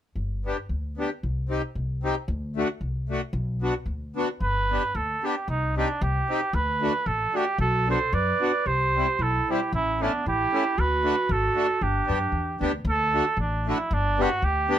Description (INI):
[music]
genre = alpine folk, alpine dance band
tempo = 114 BPM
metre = 2/4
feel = swing 54% on 8ths, rubato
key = G major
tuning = A4 = 440 Hz
[part]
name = upright bass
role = bass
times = 0.2-14.8 s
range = G1 to F#2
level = -28 LUFS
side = left 1 dB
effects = none
[part]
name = accordion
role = accompaniment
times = 0.5-14.8 s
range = G3 to G4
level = -27 LUFS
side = left 2 dB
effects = none
[part]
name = clear flugelhorn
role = melody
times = 4.4-14.8 s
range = D4 to D5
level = -25 LUFS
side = right 3 dB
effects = none
[part]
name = dark clarinet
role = second line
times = 7.6-12.6 s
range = B3 to B4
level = -30 LUFS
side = right 4 dB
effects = none
[sound]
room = light reverb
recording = close, detailed microphones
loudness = -23 LUFS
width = side -10 dB against mid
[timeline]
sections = 0.2-4.4 A section; 4.4-12.8 B section; 12.8-14.8 C section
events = none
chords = 0.2 G; 1.2 Cm; 2.3 D; 3.3 Bm; 4.4 G; 5.5 Cm; 6.5 D; 7.6 Bm; 8.7 C; 9.7 A; 10.8 D; 11.8 G; 12.8 D; 13.9 G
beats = | 0.16 0.70 | 1.23 1.76 | 2.28 2.81 | 3.34 3.88 | 4.42 4.96 | 5.49 6.01 | 6.54 7.05 | 7.58 8.12 | 8.65 9.19 | 9.72 10.25 | 10.77 11.28 | 11.80 12.32 | 12.85 13.38 | 13.90 14.42